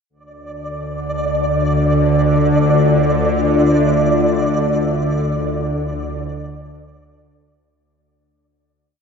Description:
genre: dark ambient drone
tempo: free time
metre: none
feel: none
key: D minor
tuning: A4 = 441 Hz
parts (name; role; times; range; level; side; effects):
- dark analog pad; sustained chords; 2.5-7.7 s; D4 to E5; -24 LUFS; left 1 dB; chorus, phaser
- bowed-like drone; drone; 0.7-7.8 s; D2 to D3; -16 LUFS; equal; built-in reverb
- flickering grainy texture; texture; 0.5-7.8 s; D5; -21 LUFS; right 1 dB; built-in reverb
room: wet huge ambient reverb, RT60 7.7 s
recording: dark, warm production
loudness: -14 LUFS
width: side -6 dB against mid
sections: 0.1-7.7 A section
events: fade-in on analog synth pad 0.1-7.7; fade-out 3.9-7.7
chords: 0.1 Dmadd9

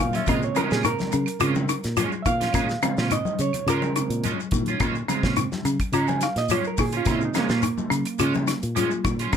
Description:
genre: afrobeat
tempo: 106 BPM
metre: 4/4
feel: straight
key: Bb minor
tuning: A4 = 440 Hz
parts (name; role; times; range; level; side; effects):
- overdriven reed electric piano; accompaniment; 0.0-9.4 s; Db3 to Bb5; -27 LUFS; right 5 dB; fast tremolo
- folk marimba with hard mallets; arpeggios; 0.0-9.4 s; Db4 to F4; -27 LUFS; left 5 dB; none
- electric guitar at the edge of break-up; stabs; 0.0-9.4 s; Ab3 to F4; -30 LUFS; right 5 dB; ensemble chorus
- fingered electric bass; bass; 0.0-9.4 s; Bb2 to Db3; -27 LUFS; equal; none
- damped 70s drum kit; drums; 0.0-9.4 s; hi-hat, kick drum, snare drum; -29 LUFS; equal; none
- congas; percussion; 0.0-9.4 s; none; -31 LUFS; left 5 dB; none
- shekere; percussion; 0.1-9.4 s; none; -34 LUFS; left 8 dB; none
- claves; percussion; 0.3-9.4 s; none; -39 LUFS; right 12 dB; none
room: moderate club reverb, RT60 0.6 s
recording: none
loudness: -21 LUFS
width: side -8 dB against mid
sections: 0.0-9.4 A section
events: reed electric piano solo 0.0-9.4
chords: 0.0 Bbm7

